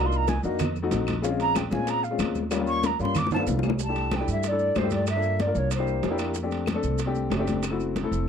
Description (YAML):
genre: Afro-Cuban jazz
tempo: 187 BPM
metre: 4/4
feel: straight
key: C major from 3.8 s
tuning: A4 = 440 Hz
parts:
  - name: breathy mellow jazz flute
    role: melody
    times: 0.0-6.2 s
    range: C5 to D6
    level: -27 LUFS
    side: right 1 dB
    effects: none
  - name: clear concert grand piano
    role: accompaniment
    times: 0.0-8.3 s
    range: G3 to Bb4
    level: -29 LUFS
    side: left 5 dB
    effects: none
  - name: upright bass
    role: bass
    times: 0.0-8.3 s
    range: F1 to Bb2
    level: -29 LUFS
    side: right 1 dB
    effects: none
  - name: bongos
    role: percussion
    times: 0.1-8.3 s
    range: none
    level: -33 LUFS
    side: left 11 dB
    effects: none
  - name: congas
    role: percussion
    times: 0.1-8.1 s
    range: none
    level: -32 LUFS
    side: left 1 dB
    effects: none
  - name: maracas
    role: percussion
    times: 0.1-8.3 s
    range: none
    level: -42 LUFS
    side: right 24 dB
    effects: none
  - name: timbales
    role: percussion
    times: 0.3-8.1 s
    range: none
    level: -36 LUFS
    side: right 9 dB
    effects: none
  - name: claves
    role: percussion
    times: 0.6-7.8 s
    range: none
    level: -42 LUFS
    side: left 17 dB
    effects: none
room: little or no reverb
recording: dry, close 1970s-style studio recording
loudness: -23 LUFS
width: side -7 dB against mid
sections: 0.0-3.8 A section; 3.8-8.3 B section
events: flute solo 0.0-3.8; drum fill 2.8-3.8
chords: 0.0 Cm7b5; 0.6 F7b9; 1.2 Bbm7; 2.5 Eb7; 3.2 G7; 3.8 C6; 5.1 Gm7; 5.7 C7; 6.4 F6; 7.6 F#m7b5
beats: 0.28 0.60 0.92 | 1.24 1.55 1.87 2.19 | 2.51 2.83 3.15 3.47 | 3.79 4.11 4.43 4.75 | 5.07 5.39 5.71 6.04 | 6.36 6.68 7.00 7.32 | 7.64 7.96 8.28